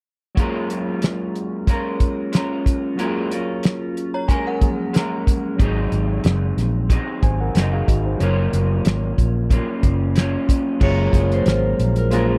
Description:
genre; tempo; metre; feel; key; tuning
indie pop, bedroom pop; 92 BPM; 4/4; swing 55% on 16ths; Gb lydian; A4 = 439 Hz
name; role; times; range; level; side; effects
tine electric piano; accompaniment; 0.3-12.4 s; F3 to Ab5; -29 LUFS; equal; overdrive, cassette tape
electric guitar through a small old amp; accompaniment; 0.4-12.4 s; Gb2 to Bb4; -27 LUFS; equal; lush chorus, warbly pitch drift
cloth-damped thuddy drum kit; drums; 0.4-12.3 s; crash cymbal, hi-hat, kick drum, snare drum; -20 LUFS; equal; none
synth chime; second line; 4.1-5.4 s; Bb4 to Bb5; -31 LUFS; equal; ensemble chorus, tremolo, subtle chorus, tape echo
vintage muted fingered electric bass; bass; 5.6-12.4 s; Gb1 to Bb1; -22 LUFS; equal; none
Celtic harp; melody; 10.8-12.4 s; Ab4 to Db5; -25 LUFS; equal; subtle chorus, tape echo
room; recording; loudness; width
little or no reverb; dry, close 1970s-style studio recording; -20 LUFS; mono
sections
0.4-10.8 A section; 10.8-12.4 B section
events
none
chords
0.4 Gbmaj9; 5.6 Ab7; 8.2 Gbmaj7; 10.8 Gbmaj9

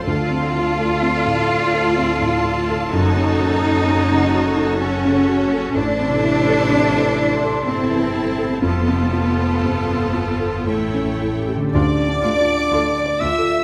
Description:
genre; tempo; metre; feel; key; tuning
cinematic, emotional film score for orchestra; 62 BPM; 3/4; rubato; unclear; A4 = 439 Hz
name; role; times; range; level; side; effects
rich symphonic violin section; second line; 0.0-13.6 s; C5 to A5; -30 LUFS; equal; none
dark studio viola section; accompaniment; 0.0-13.3 s; D4 to A4; -28 LUFS; equal; none
felt-muted upright piano; accompaniment; 0.0-13.6 s; D2 to D5; -25 LUFS; equal; none
concert harp; arpeggios; 0.0-13.6 s; F2 to C6; -28 LUFS; equal; none
rich symphonic cello section; bass; 0.1-13.3 s; D2 to F4; -23 LUFS; equal; none
rich symphonic double bass section; bass; 0.1-13.3 s; F1 to D2; -28 LUFS; equal; none
rich symphonic violin section; melody; 11.7-13.6 s; D6 to E6; -28 LUFS; equal; none
clear oboe; second line; 11.7-13.6 s; D5 to E5; -25 LUFS; equal; none
mellow flute section; second line; 11.7-13.6 s; D5 to E5; -28 LUFS; equal; none
dark French horn section; sustained chords; 11.7-13.6 s; D4 to F4; -26 LUFS; equal; none
room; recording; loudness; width
wet scoring stage reverb, RT60 1.7 s; none; -18 LUFS; mono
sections
0.0-11.7 A section; 11.7-13.6 B section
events
none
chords
0.1 Dm7; 2.9 F#m; 5.8 Am; 8.6 F; 10.7 A7; 11.7 Dm

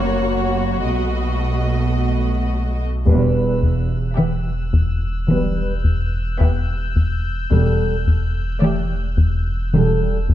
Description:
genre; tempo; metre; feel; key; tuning
cinematic, suspense film score; 54 BPM; 4/4; straight; E minor from 3.1 s; A4 = 440 Hz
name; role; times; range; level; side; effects
muted symphonic violin section; melody; 0.0-9.5 s; C#5 to E5; -29 LUFS; left 2 dB; none
muted symphonic violin section; second line; 0.0-9.5 s; F#4 to G4; -28 LUFS; left 2 dB; none
muted symphonic viola section; accompaniment; 0.0-9.5 s; A3 to B3; -27 LUFS; left 1 dB; none
muted studio cello section; bass; 0.0-10.3 s; E2 to B2; -25 LUFS; right 4 dB; none
sub bass with octave; drone; 0.0-10.3 s; E1 to B1; -23 LUFS; equal; none
muted chamber violin section; texture; 0.0-10.3 s; B5 to G6; -34 LUFS; left 6 dB; none
muted symphonic double bass section; bass; 0.8-10.3 s; E1 to B1; -24 LUFS; right 3 dB; none
mellow French horn section; sustained chords; 3.1-10.2 s; G3 to B4; -23 LUFS; left 2 dB; none
tight sequencer bass; riff; 3.1-10.3 s; E2 to E3; -18 LUFS; left 1 dB; none
room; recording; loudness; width
light reverb; dark, warm production; -17 LUFS; side -12 dB against mid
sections
0.0-3.1 A section; 3.1-10.3 B section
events
band accent 3.1-4.2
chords
0.0 F#; 0.8 B7; 3.1 Em; 7.5 Gsus2/E

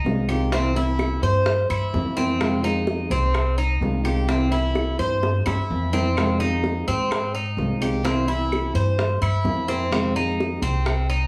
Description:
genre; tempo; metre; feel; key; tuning
latin, Cuban son and guajira; 128 BPM; 4/4; straight; F minor; A4 = 437 Hz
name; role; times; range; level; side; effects
Cuban tres; arpeggios; 0.0-11.3 s; C4 to C5; -28 LUFS; equal; none
upright bass; bass; 0.0-11.3 s; C2 to Ab2; -26 LUFS; equal; none
nylon-string guitar; accompaniment; 0.1-10.9 s; C3 to F4; -28 LUFS; equal; none
bongos; percussion; 0.1-11.1 s; none; -31 LUFS; equal; none
claves; percussion; 0.3-11.1 s; none; -38 LUFS; equal; none
room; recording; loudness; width
light reverb; studio reverb; -22 LUFS; mono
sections
0.0-11.3 A section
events
drum fill 5.2-6.2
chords
0.0 Fm7; 0.5 C7; 2.4 Fm7; 4.3 C7; 6.2 Fm7; 8.0 C7; 9.9 Fm7

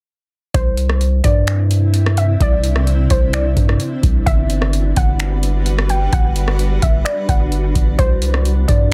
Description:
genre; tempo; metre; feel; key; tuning
hip hop, atmospheric cloud-rap; 129 BPM; 4/4; half-time; C lydian; A4 = 440 Hz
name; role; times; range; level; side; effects
warbly dusty pluck; melody; 0.5-8.9 s; C5 to G5; -26 LUFS; equal; chorus, low-pass filter, tape echo
granular cloud pad; sustained chords; 1.6-8.9 s; C3 to B4; -27 LUFS; equal; built-in reverb, sidechain pumping
long sustained 808-style bass; bass; 0.5-8.9 s; G1 to G2; -19 LUFS; equal; none
booming analog drum machine; drums; 0.5-8.9 s; finger snaps, hi-hat, kick drum, rim click; -19 LUFS; equal; soft clipping on snare
room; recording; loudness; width
little or no reverb; dense, heavily limited modern master; -16 LUFS; mono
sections
0.5-8.9 A section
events
none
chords
0.5 Cadd9; 4.3 Gmaj7; 8.0 Cadd9

